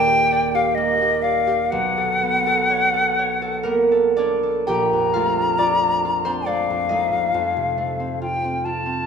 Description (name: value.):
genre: classical, impressionist duo for flute and harp.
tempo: 56-70 BPM.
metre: 3/4.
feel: rubato.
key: Bb major.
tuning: A4 = 440 Hz.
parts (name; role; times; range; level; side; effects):
concert flute; melody; 0.0-9.1 s; Eb5 to Bb5; -19 LUFS; left 3 dB; none.
concert harp; accompaniment; 0.0-9.1 s; Eb1 to G5; -22 LUFS; right 3 dB; none.
room: moderate concert hall reverb, RT60 1.8 s.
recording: minimal, uncompressed stereo recording.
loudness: -18 LUFS.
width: side -6 dB against mid.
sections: 0.0-4.7 A section; 4.7-9.1 B section.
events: none.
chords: 0.0 Ebmaj9; 1.7 B9; 4.7 Bbmaj7; 7.3 F9.